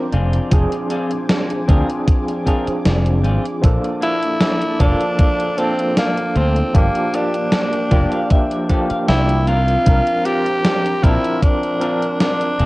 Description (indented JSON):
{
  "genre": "vaporwave",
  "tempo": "77 BPM",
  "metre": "4/4",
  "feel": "straight",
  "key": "unclear",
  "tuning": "A4 = 440 Hz",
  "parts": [
    { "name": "overdriven tine electric piano", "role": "accompaniment", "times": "0.0-12.6 s", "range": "F3 to Bb4", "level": "-22 LUFS", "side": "equal", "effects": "medium tremolo, wide subtle chorus, tape echo" },
    { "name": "lush unison pad", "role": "sustained chords", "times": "0.0-12.7 s", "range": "F3 to D6", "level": "-30 LUFS", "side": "left 1 dB", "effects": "chorus, phaser, vintage 12-bit sampler grit" },
    { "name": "clean electric guitar", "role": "riff", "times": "0.1-12.7 s", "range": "Bb3 to Bb5", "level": "-27 LUFS", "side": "left 2 dB", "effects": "wide subtle chorus, tape echo" },
    { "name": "fretless electric bass", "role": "bass", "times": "0.1-12.7 s", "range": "F1 to D2", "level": "-17 LUFS", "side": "equal", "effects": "wide subtle chorus" },
    { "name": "gated 80s digital drum machine", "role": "drums", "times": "0.1-12.7 s", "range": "hi-hat, snare drum", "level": "-21 LUFS", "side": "equal", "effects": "gated reverb, gated reverb snare" },
    { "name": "electronic kick drum", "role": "drums", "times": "0.5-11.6 s", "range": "none", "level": "-14 LUFS", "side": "equal", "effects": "none" },
    { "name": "raspy tenor saxophone", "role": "melody", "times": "4.0-12.7 s", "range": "Bb3 to G4", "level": "-20 LUFS", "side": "equal", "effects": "tape echo" }
  ],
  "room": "light reverb",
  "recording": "worn, warbling old tape, cassette tape, warbly pitch drift",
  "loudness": "-15 LUFS",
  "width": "side -20 dB against mid",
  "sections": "0.0-12.7 A section",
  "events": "clean electric guitar fill 7.5-9.9",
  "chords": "0.1 Fm6; 3.6 Bbmaj7; 6.7 Gm7; 9.5 C9sus4"
}